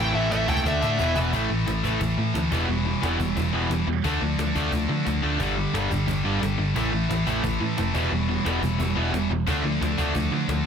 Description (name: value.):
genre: punk rock.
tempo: 177 BPM.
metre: 4/4.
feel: straight.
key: unclear.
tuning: A4 = 440 Hz.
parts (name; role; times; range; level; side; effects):
high-gain lead guitar; melody; 0.0-1.2 s; E5 to G5; -28 LUFS; equal; distortion, ping-pong delay.
crunchy overdriven guitar; riff; 0.0-10.6 s; E2 to D4; -28 LUFS; left 11 dB; none.
distorted electric guitar; riff; 0.0-10.6 s; G2 to B4; -28 LUFS; right 11 dB; distortion.
high-gain distorted guitar; riff; 0.0-10.7 s; E2 to D4; -29 LUFS; left 1 dB; distortion.
overdriven picked electric bass; bass; 0.0-10.6 s; E1 to D3; -27 LUFS; equal; none.
cajon; drums; 0.3-10.6 s; none; -34 LUFS; equal; none.
room: light reverb.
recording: dense, heavily limited modern master.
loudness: -22 LUFS.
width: side -7 dB against mid.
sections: 0.0-1.3 A section; 1.3-10.7 B section.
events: lead electric guitar solo 0.0-1.3; drum fill 0.7-1.3.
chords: 0.0 Am; 0.7 D5; 1.0 E5; 1.3 A5; 2.5 Em; 4.0 Dm; 5.4 G5; 6.8 A5; 7.9 Em; 9.5 Dm.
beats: 0.31 0.65 0.99 | 1.33 1.67 2.01 2.35 | 2.69 3.03 3.37 3.71 | 4.04 4.38 4.72 5.06 | 5.40 5.74 6.08 6.42 | 6.76 7.10 7.44 7.78 | 8.12 8.45 8.79 9.13 | 9.47 9.81 10.15 10.49.